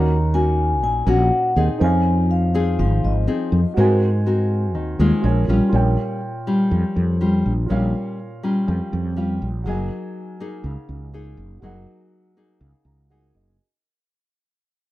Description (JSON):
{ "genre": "bossa nova", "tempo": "122 BPM", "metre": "4/4", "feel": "straight", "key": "Bb minor", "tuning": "A4 = 440 Hz", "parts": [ { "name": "vibraphone with soft mallets", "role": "melody", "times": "0.0-5.2 s", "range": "Eb5 to Bb5", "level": "-25 LUFS", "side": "left 3 dB", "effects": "none" }, { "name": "nylon-string guitar", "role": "accompaniment", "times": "0.0-13.6 s", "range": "Bb2 to Bb4", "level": "-22 LUFS", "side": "left 2 dB", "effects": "none" }, { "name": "warm concert grand piano", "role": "accompaniment", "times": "0.0-13.6 s", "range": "Db4 to Bb5", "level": "-30 LUFS", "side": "right 5 dB", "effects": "none" }, { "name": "mellow fretless electric bass", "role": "bass", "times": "0.0-13.6 s", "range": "Gb1 to Ab2", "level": "-19 LUFS", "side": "equal", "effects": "lush chorus" } ], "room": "moderate studio reverb, RT60 0.6 s", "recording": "rough home demo mix", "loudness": "-17 LUFS", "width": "side -16 dB against mid", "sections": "0.0-5.7 A section; 5.7-13.6 B section", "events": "fade-out 5.7-13.6; grand piano fill 8.2-9.7, 12.6-13.6", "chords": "0.0 Ebm7; 1.8 Dbmaj9/F; 3.8 Ab9; 5.2 Bbm7; 5.7 Bbm6; 9.7 Gb69", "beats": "0.33 0.82 1.31 | 1.81 2.30 2.79 3.28 | 3.77 4.26 4.75 5.24 | 5.73 6.22 6.71 7.20 | 7.69 8.19 8.68 9.17 | 9.66 10.15 10.64 11.13 | 11.63 12.12 12.61 13.10" }